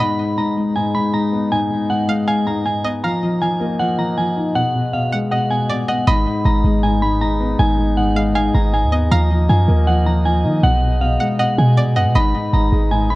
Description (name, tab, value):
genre	hip hop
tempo	158 BPM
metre	4/4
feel	half-time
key	unclear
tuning	A4 = 440 Hz
part	glassy synth bell	melody	0.0-13.2 s	F5 to Cb6	-21 LUFS	right 1 dB	chorus, low-pass filter
part	string-like resonator pluck	second line	0.0-13.2 s	D5 to F#5	-27 LUFS	right 2 dB	chorus, ping-pong delay
part	dark concert grand piano	accompaniment	0.0-13.2 s	Ab2 to Eb4	-20 LUFS	left 2 dB	low-pass filter
part	warm brass ensemble	sustained chords	0.0-13.2 s	Bb3 to Eb5	-29 LUFS	right 1 dB	none
part	warm 808-style bass	bass	6.1-13.2 s	Ab1 to Eb3	-16 LUFS	equal	none
room	little or no reverb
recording	worn, warbling old tape, cassette tape, warbly pitch drift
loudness	-15 LUFS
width	side -19 dB against mid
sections	0.0-6.1 A section; 6.1-13.2 B section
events	none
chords	0.0 Abm; 3.0 Ebsus2; 4.6 B6; 6.1 Abm; 9.1 Ebmadd9; 10.6 B6; 12.2 Abm